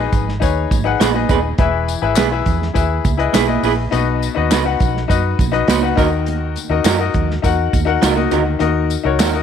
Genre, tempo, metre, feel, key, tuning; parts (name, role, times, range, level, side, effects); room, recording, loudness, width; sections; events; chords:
uptempo 1960s-style soul; 102 BPM; 4/4; straight; A4 = 439 Hz
bright upright piano; accompaniment; 0.0-9.4 s; B2 to F#5; -19 LUFS; left 11 dB
vintage muted fingered electric bass; bass; 0.0-9.4 s; D#1 to F#2; -20 LUFS; right 1 dB
warm soul drum kit; drums; 0.1-9.3 s; hi-hat, kick drum, snare drum; -19 LUFS; right 1 dB
congas; percussion; 0.1-9.3 s; -27 LUFS; right 14 dB
tambourine and handclaps; percussion; 0.1-9.3 s; -28 LUFS; left 10 dB
electric guitar through a small old amp; stabs; 1.0-9.3 s; A#3 to B4; -21 LUFS; right 12 dB
light reverb, small room ambience; 1960s-style stereo with parts hard left and right; -14 LUFS; side -8 dB against mid
0.0-9.4 A section
0.0 G#m; 1.6 E; 3.9 B; 6.0 D#m